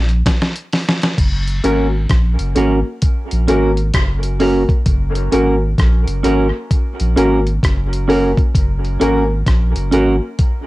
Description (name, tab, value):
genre	dub reggae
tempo	65 BPM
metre	4/4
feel	swing 64% on 16ths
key	F# major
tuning	A4 = 439 Hz
part	warm sub bass	bass	0.0-10.2 s	F#1 to A#1	-17 LUFS	equal	none
part	dusty soul sampler-style drum kit	drums	0.1-10.7 s	crash cymbal, hi-hat, kick drum, rim click, snare drum	-16 LUFS	equal	cassette tape
part	clean electric guitar	accompaniment	1.6-10.2 s	C#4 to A#4	-19 LUFS	right 4 dB	cassette tape, dub echo, plate reverb
part	dark upright piano	stabs	1.6-10.2 s	A#3 to A#4	-20 LUFS	left 2 dB	cassette tape, dub echo, plate reverb
room	light reverb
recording	home recording on cassette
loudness	-13 LUFS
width	side -18 dB against mid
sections	0.0-1.2 A section; 1.2-10.7 B section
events	break 0.0-1.2; drum fill 0.0-1.2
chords	0.0 N.C.; 1.2 F#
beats	0.25 | 1.17 2.09 3.02 3.94 | 4.86 5.78 6.70 7.62 | 8.54 9.47 10.39